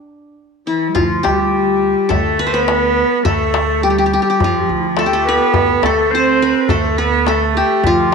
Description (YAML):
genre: Turkish makam ensemble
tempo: 104 BPM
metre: 4/4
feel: straight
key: D makam huseyni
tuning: A4 = 440 Hz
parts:
  - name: qanun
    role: melody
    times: 0.0-8.1 s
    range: D4 to C5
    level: -17 LUFS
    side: left 2 dB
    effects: none
  - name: clear cello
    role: second line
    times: 0.7-8.1 s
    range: E3-32c to C4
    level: -18 LUFS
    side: right 9 dB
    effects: slapback echo
  - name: warm clarinet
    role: second line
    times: 0.7-8.1 s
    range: E4-34c to C5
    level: -19 LUFS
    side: left 7 dB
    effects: none
  - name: upright bass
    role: bass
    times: 1.0-8.1 s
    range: D2 to F2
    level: -23 LUFS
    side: right 1 dB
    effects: none
  - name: darbuka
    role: percussion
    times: 1.0-8.1 s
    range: none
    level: -21 LUFS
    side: left 5 dB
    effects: none
room: wet echo chamber reverb, RT60 1.8 s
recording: 1960s-style stereo with parts hard left and right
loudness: -12 LUFS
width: side -5 dB against mid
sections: 1.0-8.1 A section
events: break 0.0-1.0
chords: none